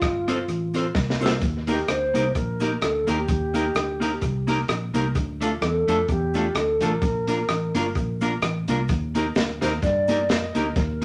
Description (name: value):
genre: ska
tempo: 128 BPM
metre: 4/4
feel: swing 56% on 8ths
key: unclear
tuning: A4 = 440 Hz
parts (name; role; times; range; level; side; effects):
- mellow alto flute; melody; 0.0-11.0 s; F4 to Eb5; -28 LUFS; equal; none
- fingered electric bass; bass; 0.0-11.0 s; G1 to G2; -31 LUFS; equal; none
- crunchy breakbeat drum kit; drums; 0.0-11.0 s; hi-hat, kick drum, rim click, snare drum; -28 LUFS; equal; tape echo
- cabasa; percussion; 0.0-11.0 s; none; -52 LUFS; equal; none
- clean electric guitar; accompaniment; 0.3-11.0 s; A3 to C5; -28 LUFS; equal; none
room: moderate studio reverb, RT60 0.6 s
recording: none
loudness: -24 LUFS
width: mono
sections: 0.0-1.4 A section; 1.4-11.0 B section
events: drum fill 0.9-1.4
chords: 0.0 F; 1.4 Eb; 5.2 Dm; 7.0 Bb; 8.9 Eb